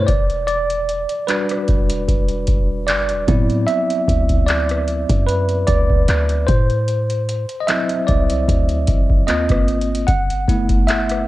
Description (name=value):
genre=contemporary R&B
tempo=75 BPM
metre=4/4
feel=swing 54% on 16ths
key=unclear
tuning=A4 = 437 Hz
part: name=bell-like tine electric piano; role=accompaniment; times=0.0-11.3 s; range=F#3 to F#5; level=-19 LUFS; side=equal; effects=medium stereo tremolo, cassette tape
part: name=warm 808-style bass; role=bass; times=0.0-11.3 s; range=E1 to A2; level=-20 LUFS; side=equal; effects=none
part: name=booming analog drum machine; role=drums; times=0.1-11.3 s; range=handclaps, hi-hat, kick drum, rim click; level=-18 LUFS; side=equal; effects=cassette tape
room=light reverb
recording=home recording on cassette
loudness=-15 LUFS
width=side -16 dB against mid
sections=0.0-11.3 A section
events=tine electric piano solo 0.0-11.3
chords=0.1 Em7; 3.3 D13; 6.5 D9; 9.3 G#69; 10.1 G69